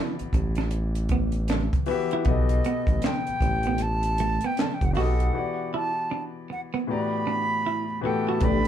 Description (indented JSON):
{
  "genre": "R&B, neo-soul",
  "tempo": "78 BPM",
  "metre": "4/4",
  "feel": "swing 63% on 16ths",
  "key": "unclear",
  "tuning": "A4 = 440 Hz",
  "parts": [
    { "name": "clean electric guitar", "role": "second line", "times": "0.0-8.4 s", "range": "A3 to F#4", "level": "-31 LUFS", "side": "right 6 dB", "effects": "none" },
    { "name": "clear grand piano", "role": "accompaniment", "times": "0.0-8.7 s", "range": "A2 to E5", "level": "-30 LUFS", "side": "left 4 dB", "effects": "none" },
    { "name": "smooth synth bass", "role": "bass", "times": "0.2-8.7 s", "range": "F#1 to B1", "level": "-26 LUFS", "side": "equal", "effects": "none" },
    { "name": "compact cocktail drum kit", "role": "drums", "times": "0.2-8.7 s", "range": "handclaps, hi-hat, kick drum, snare drum", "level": "-27 LUFS", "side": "right 1 dB", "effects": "none" },
    { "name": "breathy silver concert flute", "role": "melody", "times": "2.3-8.7 s", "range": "D#5 to B5", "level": "-29 LUFS", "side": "right 1 dB", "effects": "none" },
    { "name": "warm studio string section", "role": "sustained chords", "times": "8.4-8.7 s", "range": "G3 to D4", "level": "-31 LUFS", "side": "left 2 dB", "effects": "none" }
  ],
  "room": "moderate studio reverb, RT60 0.7 s",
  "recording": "band playing live in one room",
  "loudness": "-23 LUFS",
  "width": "side -10 dB against mid",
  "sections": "0.0-8.4 A section",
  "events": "break 5.3-8.4",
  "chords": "0.0 Em9; 2.3 B7b13; 5.3 Em9; 6.9 A13sus4",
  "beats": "0.72 1.49 | 2.26 3.03 3.80 4.57 | 5.34 6.11 6.87 7.64 | 8.41"
}